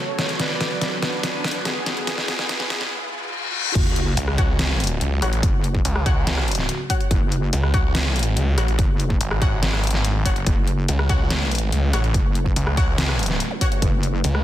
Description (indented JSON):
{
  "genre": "heavy wobble dubstep",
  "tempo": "143 BPM",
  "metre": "4/4",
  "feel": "half-time",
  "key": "F# minor",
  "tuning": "A4 = 440 Hz",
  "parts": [
    { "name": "soft supersaw", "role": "melody", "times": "0.0-3.7 s", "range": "B3 to D5", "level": "-29 LUFS", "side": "equal", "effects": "tape echo" },
    { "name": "supersaw pad", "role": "sustained chords", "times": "0.0-14.4 s", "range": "C#3 to B4", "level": "-33 LUFS", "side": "right 2 dB", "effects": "sidechain pumping, low-pass filter" },
    { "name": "riser, reverse cymbal, sub drop and zap", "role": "sound effects", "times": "0.9-5.4, 13.5-13.6 s", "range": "none", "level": "-30 LUFS", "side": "left 1 dB", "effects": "none" },
    { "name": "dubstep drum kit", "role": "drums", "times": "0.2-14.4 s", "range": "crash cymbal, hi-hat, rim click, snare drum", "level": "-25 LUFS", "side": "equal", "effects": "none" },
    { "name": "wobble bass", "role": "bass", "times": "3.8-14.2 s", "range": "F#1", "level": "-23 LUFS", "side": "equal", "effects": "chorus, overdrive" },
    { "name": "electronic kick drum", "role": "drums", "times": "3.8-13.9 s", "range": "none", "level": "-21 LUFS", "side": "equal", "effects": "none" },
    { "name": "snarling distorted saw bass", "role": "bass", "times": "4.2-14.4 s", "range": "F#1 to C#2", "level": "-21 LUFS", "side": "equal", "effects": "distortion, overdrive" },
    { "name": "orchestra-hit-like synth stab", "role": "stabs", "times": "4.4-13.7 s", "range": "F#4 to F#5", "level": "-31 LUFS", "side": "left 3 dB", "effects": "built-in reverb, tape echo" }
  ],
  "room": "light reverb",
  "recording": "dense, heavily limited modern master, high-pass filter",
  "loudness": "-19 LUFS",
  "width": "side -13 dB against mid",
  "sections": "0.0-3.8 A section; 3.8-14.4 B section",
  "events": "build-up 0.0-3.8; drum fill 0.0-2.9; filter sweep 0.0-3.8; riser 0.9-3.8; reverse cymbal 2.9-3.8; drop 3.8-14.4; impact 3.8-5.4",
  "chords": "0.4 Bm; 3.8 F#m",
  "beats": "| 0.40 0.81 1.23 1.65 | 2.07 2.49 2.91 3.33 | 3.75 4.17 4.59 5.01 | 5.43 5.85 6.27 6.69 | 7.11 7.53 7.95 8.37 | 8.79 9.21 9.63 10.05 | 10.46 10.88 11.30 11.72 | 12.14 12.56 12.98 13.40 | 13.82 14.24"
}